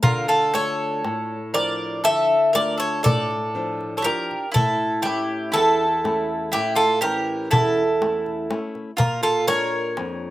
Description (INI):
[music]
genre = greek folk, Greek bouzouki band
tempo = 121 BPM (eighths)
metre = 9/8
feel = straight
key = unclear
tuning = A4 = 440 Hz
[part]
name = Greek bouzouki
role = melody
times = 0.0-10.3 s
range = G4 to E5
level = -21 LUFS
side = equal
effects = slapback echo
[part]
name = mandolin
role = second line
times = 0.0-10.3 s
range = E4 to Bb4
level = -27 LUFS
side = right 2 dB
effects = slapback echo
[part]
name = flamenco guitar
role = accompaniment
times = 0.0-10.3 s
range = E2 to F4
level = -29 LUFS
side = left 2 dB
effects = slapback echo
[part]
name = darbuka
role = percussion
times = 0.0-10.2 s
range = none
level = -23 LUFS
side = left 1 dB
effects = none
[sound]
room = little or no reverb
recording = recorded outdoors, with no room sound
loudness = -19 LUFS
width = side -15 dB against mid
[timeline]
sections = 0.0-10.3 A section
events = speeding up 0.0-10.3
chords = 0.0 Dm; 4.6 A; 9.0 Bb